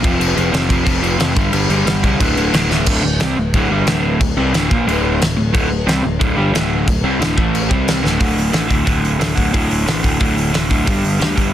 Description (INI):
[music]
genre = punk rock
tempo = 180 BPM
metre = 4/4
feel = straight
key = D minor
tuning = A4 = 442 Hz
[part]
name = crunchy overdriven guitar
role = riff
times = 0.0-11.5 s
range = D2 to C4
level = -17 LUFS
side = equal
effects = none
[part]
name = overdriven picked electric bass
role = bass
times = 0.0-11.5 s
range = D1 to D2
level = -21 LUFS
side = equal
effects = none
[part]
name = loose indie drum kit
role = drums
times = 0.0-11.5 s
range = crash cymbal, hi-hat, kick drum, snare drum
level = -18 LUFS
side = equal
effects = none
[sound]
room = little or no reverb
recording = dense, heavily limited modern master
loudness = -13 LUFS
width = side -11 dB against mid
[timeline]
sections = 0.0-2.9 A section; 2.9-8.2 B section; 8.2-11.5 C section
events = drum fill 2.7, 8.0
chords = 0.0 F5; 1.4 G5; 2.2 D5; 7.4 A5; 7.7 C5; 8.0 D5; 10.9 G5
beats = | 0.21 0.54 0.88 1.21 | 1.54 1.87 2.21 2.54 | 2.87 3.20 3.54 3.87 | 4.20 4.53 4.87 5.20 | 5.53 5.87 6.20 6.53 | 6.86 7.20 7.53 7.87 | 8.20 8.53 8.87 9.20 | 9.54 9.87 10.21 10.54 | 10.88 11.21